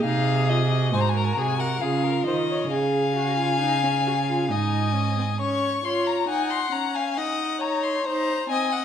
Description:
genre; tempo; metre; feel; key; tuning
classical, baroque-style fugue for string quartet; 68 BPM; 3/4; straight; Db major; A4 = 440 Hz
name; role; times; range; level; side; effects
rich violin; melody; 0.0-8.8 s; Eb5 to Db6; -26 LUFS; left 8 dB; none
rich violin; second line; 0.0-8.8 s; Ab4 to Gb5; -28 LUFS; left 3 dB; none
dark viola; accompaniment; 0.0-8.8 s; C4 to Ab4; -29 LUFS; right 2 dB; none
warm cello; bass; 0.0-5.4 s; Ab2 to Eb3; -24 LUFS; right 4 dB; none
room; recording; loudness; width
wet recital hall reverb, RT60 1.3 s; dark, warm production; -21 LUFS; side -8 dB against mid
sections
0.0-5.4 A section; 5.4-8.8 B section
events
none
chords
0.0 Ab7/C; 1.8 Db; 2.7 Absus4/Db; 4.5 Ab5; 5.4 Db; 7.2 Ebm7; 8.1 Ab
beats
| 0.04 0.93 1.81 | 2.70 3.61 4.51 | 5.40 6.29 7.17 | 8.05

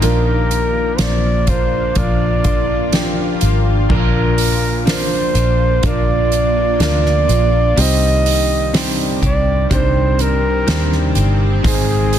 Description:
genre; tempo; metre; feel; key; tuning
pop ballad; 62 BPM; 4/4; straight; unclear; A4 = 440 Hz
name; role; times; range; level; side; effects
warm flugelhorn; melody; 0.0-12.2 s; Ab4 to Eb5; -19 LUFS; right 2 dB; digital delay
clear upright piano; accompaniment; 0.0-12.2 s; Ab2 to C5; -23 LUFS; right 1 dB; none
shimmering ambient pad; sustained chords; 0.0-12.2 s; C3 to F4; -24 LUFS; right 1 dB; chorus, built-in reverb
direct-recorded clean electric guitar; arpeggios; 0.0-12.2 s; Ab2 to Ab4; -25 LUFS; left 9 dB; none
vintage muted fingered electric bass; bass; 0.0-12.2 s; G1 to Eb2; -17 LUFS; equal; none
soft-mallet drum kit; drums; 0.0-12.2 s; crash cymbal, hi-hat, kick drum, snare drum; -20 LUFS; equal; none
room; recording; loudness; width
little or no reverb; dense, heavily limited modern master; -13 LUFS; side -10 dB against mid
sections
0.0-3.9 A section; 3.9-12.2 B section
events
none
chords
0.0 Bb; 7.8 Cmadd9; 11.6 Ab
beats
| 0.03 1.00 1.97 2.93 | 3.90 4.87 5.84 6.80 | 7.77 8.74 9.71 10.68 | 11.64

